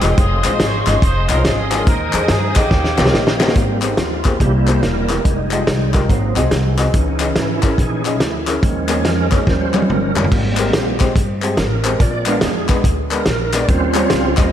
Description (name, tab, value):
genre	uptempo gospel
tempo	142 BPM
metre	4/4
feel	swing 63% on 8ths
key	Ab major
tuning	A4 = 440 Hz
part	warm horn section	melody	0.0-3.4 s	Bb3 to Db5	-22 LUFS	right 1 dB	slapback echo
part	warm upright piano	accompaniment	0.0-14.5 s	Ab2 to Eb5	-22 LUFS	left 2 dB	slapback echo
part	bright tonewheel organ	sustained chords	0.0-14.5 s	Fb3 to Eb6	-21 LUFS	right 2 dB	slow rotary speaker, chorus vibrato
part	upright bass	bass	0.0-14.5 s	Fb1 to G2	-20 LUFS	equal	none
part	warm soul drum kit	drums	0.0-14.4 s	crash cymbal, hi-hat, kick drum, snare drum, toms	-18 LUFS	equal	none
part	group handclap	percussion	0.0-14.4 s	none	-26 LUFS	left 7 dB	none
part	mellow electric guitar	second line	5.9-6.9 s	C4 to C5	-28 LUFS	right 4 dB	phaser, slapback echo
room	moderate lush hall reverb, RT60 1.9 s, small room ambience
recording	big arena sound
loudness	-14 LUFS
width	side -10 dB against mid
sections	0.0-3.6 A section; 3.6-14.5 B section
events	drum fill 2.7-3.6, 9.5-10.3; upright piano fill 2.9-3.6; tonewheel organ solo 3.6-14.5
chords	0.2 Dbmaj9/F; 1.9 Ab/Eb; 2.7 Eb9; 3.6 Abmaj9; 4.4 C7; 5.3 Fm9; 6.1 Ab7; 6.9 Dbmadd9; 8.6 Eb7sus4; 9.5 Eb9; 10.3 Abmaj9; 12.0 Bb7b9; 13.7 Eb13